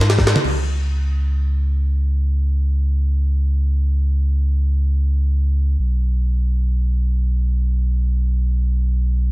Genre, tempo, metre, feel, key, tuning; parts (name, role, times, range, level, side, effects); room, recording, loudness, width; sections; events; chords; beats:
liquid drum and bass; free time; A4 = 440 Hz
warm sub bass; bass; 0.0-9.3 s; B1 to G#2; -16 LUFS; equal
jungle sampler-style drum kit; drums; 0.0-0.5 s; crash cymbal, hi-hat, ride cymbal, snare drum, toms; -21 LUFS; equal
little or no reverb; dark, warm production; -17 LUFS; side -20 dB against mid
0.4-9.3 A section
drum fill 0.1-0.4; band accent 0.3
free time